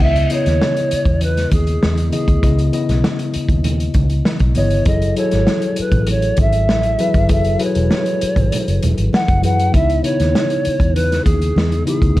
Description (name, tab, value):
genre	lush 1970s-style soul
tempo	99 BPM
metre	4/4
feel	straight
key	C# minor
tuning	A4 = 440 Hz
part	mellow polished pan flute	melody	0.0-12.2 s	G#4 to F#5	-20 LUFS	right 1 dB	none
part	tine electric piano	accompaniment	0.0-12.2 s	C#3 to D#5	-21 LUFS	left 3 dB	none
part	vintage muted fingered electric bass	bass	0.0-12.2 s	E1 to F#2	-17 LUFS	equal	none
part	vintage drum kit	drums	0.0-12.2 s	crash cymbal, hi-hat, kick drum, snare drum	-19 LUFS	equal	none
part	congas	percussion	0.0-12.2 s	none	-27 LUFS	right 4 dB	none
room	little or no reverb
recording	dark, warm production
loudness	-14 LUFS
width	side -16 dB against mid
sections	0.0-12.2 A section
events	none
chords	0.0 C#m9; 4.9 F#m9; 9.7 C#m9